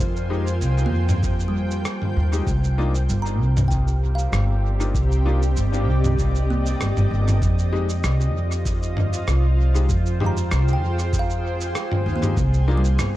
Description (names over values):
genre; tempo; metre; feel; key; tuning
ambient dub; 97 BPM; 4/4; swing 54% on 16ths; unclear; A4 = 440 Hz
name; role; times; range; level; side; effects
granular cloud pad; sustained chords; 0.0-13.2 s; C4 to Ab5; -29 LUFS; equal; built-in reverb
upright bass; bass; 0.0-13.2 s; G1 to F2; -20 LUFS; equal; none
lo-fi sampler-style drum kit; drums; 0.0-13.1 s; rim click, shaker, toms; -27 LUFS; equal; dub echo
wind-like tuned noise texture; texture; 0.0-7.4 s; Bb4; -44 LUFS; right 4 dB; none
clear upright piano; stabs; 0.3-12.8 s; Ab3 to G4; -32 LUFS; left 4 dB; dub echo
kalimba; arpeggios; 0.9-13.2 s; G3 to Bb5; -32 LUFS; right 1 dB; dub echo
electronic kick drum; drums; 1.2-12.5 s; none; -26 LUFS; equal; overdrive
room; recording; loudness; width
little or no reverb; dark, warm production; -19 LUFS; side -15 dB against mid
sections
0.0-7.4 A section; 7.4-13.2 B section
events
none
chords
0.0 Fm9; 2.5 Cm11; 7.4 Fm9; 12.4 Cm11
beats
| 0.00 0.61 1.23 1.85 | 2.47 3.09 3.71 4.33 | 4.95 5.56 6.18 6.80 | 7.42 8.04 8.66 9.28 | 9.89 10.51 11.13 11.75 | 12.37 12.99